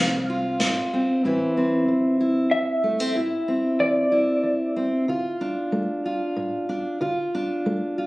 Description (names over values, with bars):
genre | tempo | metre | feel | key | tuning
acoustic folk duo or small band | 94 BPM | 3/4 | straight | A minor | A4 = 440 Hz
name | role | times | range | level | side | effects
electric guitar through a small old amp | melody | 0.0-4.7 s | D5 to F5 | -23 LUFS | equal | tremolo
fingerpicked steel-string acoustic guitar | accompaniment | 0.0-8.1 s | E2 to F4 | -22 LUFS | equal | none
upright bass | bass | 0.0-0.6 s | C2 | -34 LUFS | equal | none
unplugged drum kit | drums | 0.6-0.7 s | ride cymbal, snare drum | -24 LUFS | equal | none
room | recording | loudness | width
moderate small room reverb, RT60 0.6 s | recorded on a phone in the room, studio reverb, compression | -21 LUFS | side -20 dB against mid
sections
0.0-1.2 A section; 1.2-8.1 B section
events
none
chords
0.0 F; 1.2 Am; 5.1 Dm